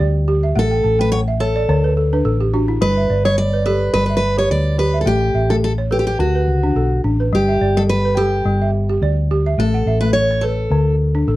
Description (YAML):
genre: west african traditional, West African string and xylophone music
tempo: 106 BPM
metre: 4/4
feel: swing 55% on 16ths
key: G lydian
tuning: A4 = 440 Hz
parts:
  - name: balafon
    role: arpeggios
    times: 0.0-11.4 s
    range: D3 to A5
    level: -20 LUFS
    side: equal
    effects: none
  - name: hollow-body short-scale fingered electric bass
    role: bass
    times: 0.0-11.4 s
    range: G1 to D2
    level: -18 LUFS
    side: equal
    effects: none
  - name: picked steel-string acoustic guitar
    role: melody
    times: 0.6-10.9 s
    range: F#4 to D5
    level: -19 LUFS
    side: equal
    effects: none
room: little or no reverb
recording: dry, close 1970s-style studio recording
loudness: -14 LUFS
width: side -16 dB against mid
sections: 0.0-11.4 A section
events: balafon fill 0.6-2.8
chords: 0.0 G5; 0.6 A5; 1.7 D5; 2.8 G; 5.1 A; 6.2 D; 7.3 G; 9.6 A; 10.7 D5